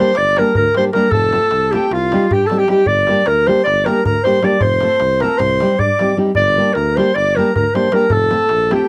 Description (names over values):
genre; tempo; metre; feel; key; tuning
balkan folk, Balkan wedding band; 309 BPM (eighths); 9/8; straight; G minor; A4 = 440 Hz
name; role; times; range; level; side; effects
warm clarinet; melody; 0.0-8.9 s; F4 to D5; -17 LUFS; equal; cassette tape
accordion; second line; 0.0-8.9 s; F5 to D6; -28 LUFS; equal; cassette tape
nylon-string guitar; accompaniment; 0.0-8.8 s; G3 to A4; -20 LUFS; equal; cassette tape
darbuka; percussion; 0.1-8.9 s; none; -25 LUFS; equal; none
mellow tuba; bass; 0.2-8.7 s; F1 to G2; -25 LUFS; equal; none
room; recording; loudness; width
light reverb; home recording on cassette; -15 LUFS; mono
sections
0.0-8.9 A section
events
none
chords
0.0 Gm; 1.1 F; 1.9 Cm; 2.9 Gm; 4.6 F; 5.4 Cm; 6.4 Gm; 8.1 F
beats
0.14 0.34 0.54 0.73 0.93 | 1.12 1.31 1.51 1.70 1.90 2.09 2.29 2.48 2.68 | 2.87 3.07 3.26 3.46 3.65 3.84 4.04 4.23 4.43 | 4.62 4.81 5.01 5.20 5.39 5.59 5.78 5.98 6.17 | 6.37 6.56 6.75 6.95 7.14 7.33 7.53 7.72 7.92 | 8.11 8.31 8.50 8.70